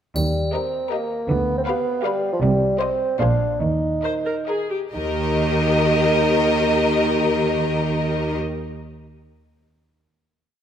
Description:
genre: cinematic, playful, whimsical film cue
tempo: 132-162 BPM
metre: 3/4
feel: straight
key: Eb major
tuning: A4 = 440 Hz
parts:
  - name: clear chamber double bass section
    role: bass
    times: 0.1-8.4 s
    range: Bb1 to Eb2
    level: -25 LUFS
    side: right 2 dB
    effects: none
  - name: rich studio cello section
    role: bass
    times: 0.1-8.4 s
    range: Bb2 to Eb3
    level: -26 LUFS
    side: right 2 dB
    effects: none
  - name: dark bassoon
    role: accompaniment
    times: 0.2-8.4 s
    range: F3 to Eb4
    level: -24 LUFS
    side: right 2 dB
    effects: none
  - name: triangle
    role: percussion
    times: 0.2-0.9 s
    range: none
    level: -35 LUFS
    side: equal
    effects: none
  - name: rich studio violin section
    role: melody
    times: 0.5-8.4 s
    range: Eb5 to F5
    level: -27 LUFS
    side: left 2 dB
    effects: none
  - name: clear chamber violin section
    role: second line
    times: 0.5-8.4 s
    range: Bb4 to C5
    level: -26 LUFS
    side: left 4 dB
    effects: none
  - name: rich chamber viola section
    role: accompaniment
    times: 0.5-8.4 s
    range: G4 to C5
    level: -27 LUFS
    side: left 3 dB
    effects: none
room: moderate scoring stage reverb, RT60 1.7 s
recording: none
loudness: -18 LUFS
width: side -9 dB against mid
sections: 0.2-4.9 A section; 4.9-7.6 final chord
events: slowing down 1.9-4.9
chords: 0.2 Eb; 1.3 G7/D; 2.4 Cm; 3.2 Bb9; 3.6 Eb5; 4.9 Eb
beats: | 0.15 0.54 0.92 | 1.30 1.67 2.04 | 2.42 2.81 3.20 | 3.62 4.04 4.48 | 4.93 5.38 5.83 | 6.28 6.72 7.16

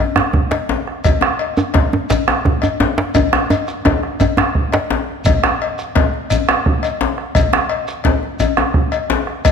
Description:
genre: west african traditional, West African drum ensemble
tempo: 114 BPM (dotted quarters)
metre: 12/8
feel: straight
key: none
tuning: none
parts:
  - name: bombo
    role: percussion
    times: 0.2-9.5 s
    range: none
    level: -18 LUFS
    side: right 3 dB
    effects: none
  - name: djembe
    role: percussion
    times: 0.2-9.5 s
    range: none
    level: -20 LUFS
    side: left 5 dB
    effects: none
  - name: djembe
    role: percussion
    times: 0.2-4.9 s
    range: none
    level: -18 LUFS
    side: right 2 dB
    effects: none
  - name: cowbell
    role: percussion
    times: 0.5-9.5 s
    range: none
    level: -22 LUFS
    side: left 9 dB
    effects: none
  - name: shekere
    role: percussion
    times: 1.0-9.5 s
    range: none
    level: -25 LUFS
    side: right 2 dB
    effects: none
room: moderate recital hall reverb, RT60 1.7 s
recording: none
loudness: -14 LUFS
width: side -6 dB against mid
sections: 0.0-5.3 A section; 5.3-9.5 B section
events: drum fill 3.1-5.3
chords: none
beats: 0.51 | 1.04 1.57 2.10 2.62 | 3.15 3.68 4.20 4.73 | 5.25 5.78 6.30 6.83 | 7.35 7.88 8.40 8.92 | 9.45

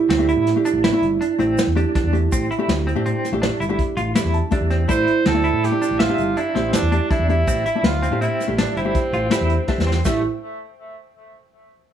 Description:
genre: progressive instrumental, band music in an uneven meter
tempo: 163 BPM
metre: 7/4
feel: straight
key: A minor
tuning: A4 = 440 Hz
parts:
  - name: vibraphone with medium hard mallets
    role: second line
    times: 0.0-10.2 s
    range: E4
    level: -23 LUFS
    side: right 7 dB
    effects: none
  - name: hollow-body jazz guitar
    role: accompaniment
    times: 0.0-10.2 s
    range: A3 to A5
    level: -26 LUFS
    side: left 4 dB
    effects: none
  - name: clean electric guitar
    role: arpeggios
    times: 0.1-10.2 s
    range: A3 to E5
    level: -26 LUFS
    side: equal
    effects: tremolo
  - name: overdriven fingered electric bass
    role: bass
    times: 0.1-10.2 s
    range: G1 to A2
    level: -22 LUFS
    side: equal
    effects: none
  - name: vintage brush drum kit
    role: drums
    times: 0.1-10.1 s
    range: hi-hat, kick drum, snare drum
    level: -22 LUFS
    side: equal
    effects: none
  - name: egg shaker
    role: percussion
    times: 0.7-10.2 s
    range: none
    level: -37 LUFS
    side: right 8 dB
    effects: none
  - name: clear tenor saxophone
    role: melody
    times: 4.9-10.2 s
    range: A3 to C5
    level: -24 LUFS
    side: right 1 dB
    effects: plate reverb, tape echo
room: light reverb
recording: none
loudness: -17 LUFS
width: side -9 dB against mid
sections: 0.0-10.1 A section; 10.1-11.9 B section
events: hollow-body jazz guitar fill 4.2-4.9, 9.5-10.1; drum fill 9.7-10.1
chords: 0.0 Am7; 10.1 A5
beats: 0.10 0.47 0.84 1.21 1.58 1.95 | 2.31 2.68 3.05 3.42 3.79 4.16 4.53 | 4.89 5.26 5.63 6.00 6.37 6.74 7.11 | 7.47 7.84 8.21 8.58 8.95 9.31 9.68 | 10.05

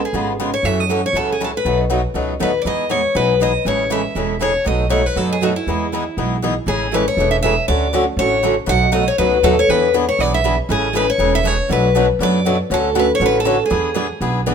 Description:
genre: acoustic string swing (jazz manouche)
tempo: 239 BPM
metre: 4/4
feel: swing 56% on 8ths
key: E major, A major from 6.7 s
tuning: A4 = 438 Hz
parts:
  - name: picked steel-string acoustic guitar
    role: melody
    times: 0.0-14.5 s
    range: E4 to F#5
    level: -18 LUFS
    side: left 2 dB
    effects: none
  - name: upright bass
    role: bass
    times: 0.0-14.5 s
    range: E1 to F#2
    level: -22 LUFS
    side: right 1 dB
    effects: none
  - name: picked steel-string acoustic guitar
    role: accompaniment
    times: 0.1-14.5 s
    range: B2 to B4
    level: -22 LUFS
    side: right 7 dB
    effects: none
  - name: picked swing-style acoustic guitar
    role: accompaniment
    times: 0.1-14.5 s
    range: B2 to G#4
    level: -22 LUFS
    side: left 5 dB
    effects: none
room: moderate studio reverb, RT60 0.8 s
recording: minimal, uncompressed stereo recording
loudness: -15 LUFS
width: side -7 dB against mid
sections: 0.0-6.7 A section; 6.7-14.5 B section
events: none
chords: 0.0 C#7; 0.6 F#m7; 1.6 B7; 2.7 Emaj7; 3.7 Amaj7; 4.7 B7; 5.7 Emaj7; 6.7 Amaj7; 7.7 Dmaj7; 8.7 B7; 9.7 E7; 10.7 Amaj7; 11.7 Bm7; 12.7 Dmaj7; 13.7 E7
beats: 0.14 0.39 | 0.64 0.89 1.15 1.40 | 1.65 1.90 2.15 2.40 | 2.65 2.91 3.16 3.41 | 3.66 3.91 4.16 4.41 | 4.67 4.92 5.17 5.42 | 5.67 5.92 6.17 6.43 | 6.68 6.93 7.18 7.43 | 7.68 7.93 8.19 8.44 | 8.69 8.94 9.19 9.44 | 9.69 9.94 10.19 10.44 | 10.70 10.95 11.20 11.45 | 11.70 11.95 12.20 12.45 | 12.70 12.96 13.21 13.46 | 13.71 13.96 14.21 14.46

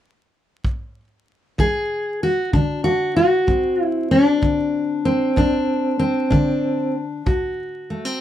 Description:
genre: acoustic country blues, solo or duo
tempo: 63 BPM (dotted quarters)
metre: 12/8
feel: straight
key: D mixolydian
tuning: A4 = 440 Hz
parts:
  - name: kick drum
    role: drums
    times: 0.6-7.4 s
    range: none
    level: -22 LUFS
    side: equal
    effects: none
  - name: fingerpicked steel-string acoustic guitar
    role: melody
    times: 1.6-8.2 s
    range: D2 to G#4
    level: -18 LUFS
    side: equal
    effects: none
room: light reverb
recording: vinyl crackle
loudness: -17 LUFS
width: side -11 dB against mid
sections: 0.0-1.6 A section; 1.6-8.2 B section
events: none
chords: 0.0 N.C.; 1.6 D7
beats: 0.65 | 1.59 2.54 3.48 4.43 | 5.38 6.32 7.27

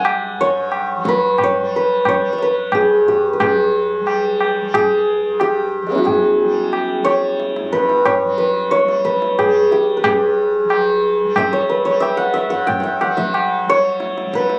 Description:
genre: indian classical, Hindustani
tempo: 90 BPM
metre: 5/4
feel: straight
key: G raga marwa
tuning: A4 = 440 Hz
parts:
  - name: santur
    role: melody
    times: 0.0-14.6 s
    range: Ab3 to Ab5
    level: -18 LUFS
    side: equal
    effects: none
  - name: tanpura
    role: drone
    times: 0.0-14.6 s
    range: G2 to G3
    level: -29 LUFS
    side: equal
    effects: none
  - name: tabla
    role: percussion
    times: 0.0-14.6 s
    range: none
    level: -24 LUFS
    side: equal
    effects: none
room: little or no reverb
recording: recorded on a phone in the room, club reverb, compression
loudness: -17 LUFS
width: mono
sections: 0.0-3.4 A section; 3.4-14.6 B section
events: none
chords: none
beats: | 0.05 0.72 1.39 2.06 2.73 | 3.40 4.07 4.73 5.40 6.06 | 6.73 7.39 8.06 8.72 9.38 | 10.05 10.71 11.37 12.03 12.69 | 13.35 14.01

